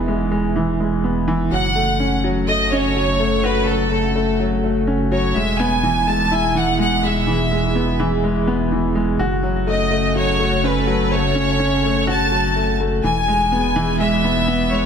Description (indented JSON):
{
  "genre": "electronica",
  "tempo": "125 BPM",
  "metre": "4/4",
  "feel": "straight",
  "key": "F# minor",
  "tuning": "A4 = 439 Hz",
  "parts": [
    { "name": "lush unison pad", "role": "sustained chords", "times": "0.0-14.9 s", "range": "B2 to B4", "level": "-24 LUFS", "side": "equal", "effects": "chorus, phaser" },
    { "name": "clear grand piano", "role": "riff", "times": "0.0-14.9 s", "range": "E3 to F#4", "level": "-20 LUFS", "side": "left 1 dB", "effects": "ping-pong delay" },
    { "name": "round analog bass", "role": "bass", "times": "0.0-14.9 s", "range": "E1 to F#1", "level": "-24 LUFS", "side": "right 1 dB", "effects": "none" },
    { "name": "clear chamber violin section", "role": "melody", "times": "1.5-14.9 s", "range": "A4 to A5", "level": "-20 LUFS", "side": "equal", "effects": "none" }
  ],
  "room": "moderate concert hall reverb, RT60 2.1 s",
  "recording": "none",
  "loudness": "-16 LUFS",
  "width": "side -7 dB against mid",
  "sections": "0.0-14.9 A section",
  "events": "none",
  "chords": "0.0 E; 1.5 F#m; 5.4 E; 9.2 F#m; 13.0 E"
}